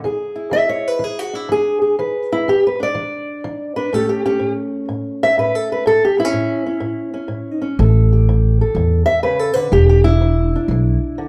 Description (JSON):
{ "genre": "acoustic country blues, solo or duo", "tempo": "124 BPM", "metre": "4/4", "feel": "swing 66% on 8ths", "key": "unclear", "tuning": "A4 = 440 Hz", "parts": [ { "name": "fingerpicked old ladder-braced acoustic guitar", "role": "melody", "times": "0.0-11.3 s", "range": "A2 to E5", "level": "-19 LUFS", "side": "equal", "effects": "none" }, { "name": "upright bass", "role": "bass", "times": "7.8-11.0 s", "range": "E1 to E2", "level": "-16 LUFS", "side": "equal", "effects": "none" } ], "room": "light reverb", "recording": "band playing live in one room", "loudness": "-17 LUFS", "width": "mono", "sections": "0.0-11.3 A section", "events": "steel-string acoustic guitar solo 0.0-11.3", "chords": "0.0 E7; 3.9 A7; 9.7 E5" }